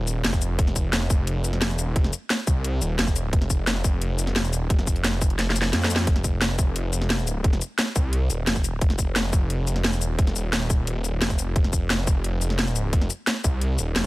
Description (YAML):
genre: dark technical drum and bass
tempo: 175 BPM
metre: 4/4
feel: straight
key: unclear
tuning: A4 = 440 Hz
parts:
  - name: snarling distorted saw bass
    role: bass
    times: 0.0-14.1 s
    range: Eb1 to F2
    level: -25 LUFS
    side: equal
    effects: overdrive, sidechain pumping
  - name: drum and bass drum kit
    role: drums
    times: 0.1-14.1 s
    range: hi-hat, shaker, snare drum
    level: -25 LUFS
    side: equal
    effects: overdrive
  - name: electronic kick drum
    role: drums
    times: 0.3-14.1 s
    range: none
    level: -22 LUFS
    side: equal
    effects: overdrive
room: digital ambience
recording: none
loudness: -21 LUFS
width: side -19 dB against mid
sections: 0.0-14.1 A section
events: kick drops out 5.4-6.1; drum fill 5.4-6.1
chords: none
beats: 0.24 | 0.59 0.93 1.27 1.61 | 1.96 2.30 2.64 2.99 | 3.33 3.67 4.01 4.36 | 4.70 5.04 5.39 5.73 | 6.07 6.42 6.76 7.10 | 7.44 7.79 8.13 8.47 | 8.81 9.16 9.50 9.84 | 10.19 10.53 10.87 11.21 | 11.56 11.90 12.24 12.59 | 12.93 13.27 13.62 13.96